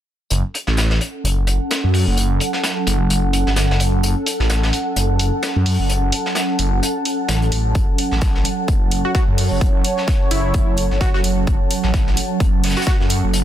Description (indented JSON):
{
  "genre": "bass house",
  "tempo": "129 BPM",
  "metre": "4/4",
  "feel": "swing 57% on 16ths",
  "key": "F# minor",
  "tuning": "A4 = 440 Hz",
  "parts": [
    { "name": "sweeping resonant pad", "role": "sustained chords", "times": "0.3-13.4 s", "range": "F#3 to C#5", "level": "-26 LUFS", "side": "right 4 dB", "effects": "chorus, sidechain pumping" },
    { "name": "phased detuned saw bass", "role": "bass", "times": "0.3-13.4 s", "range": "F#1 to F#2", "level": "-18 LUFS", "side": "equal", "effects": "phaser, tube saturation, sidechain pumping" },
    { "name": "vintage brush drum kit", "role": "drums", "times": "0.3-13.4 s", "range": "hi-hat, snare drum", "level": "-24 LUFS", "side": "left 1 dB", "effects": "sidechain pumping on hats, high-pass filter on hats, small room ambience, high-pass filter on snare, high-pass filter on room" },
    { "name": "ethereal airy pad", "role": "texture", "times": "0.9-13.4 s", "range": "C#4 to A5", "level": "-24 LUFS", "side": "equal", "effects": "ensemble chorus, built-in reverb, sidechain pumping" },
    { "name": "electronic hi-hat", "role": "drums", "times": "0.5-13.2 s", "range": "none", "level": "-25 LUFS", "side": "right 1 dB", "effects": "low-pass filter on hats, small room ambience" },
    { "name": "electronic kick drum", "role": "drums", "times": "7.8-13.0 s", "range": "none", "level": "-18 LUFS", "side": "equal", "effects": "small room ambience" },
    { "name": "plucky unison lead", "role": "melody", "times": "9.0-13.0 s", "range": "E4 to F#4", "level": "-26 LUFS", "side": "equal", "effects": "digital delay" }
  ],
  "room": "light reverb, small room ambience",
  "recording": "dense, heavily limited modern master",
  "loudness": "-16 LUFS",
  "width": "side -11 dB against mid",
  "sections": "0.3-13.4 A section",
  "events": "filter sweep on analog synth pad 0.3-13.4",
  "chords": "0.3 F#m"
}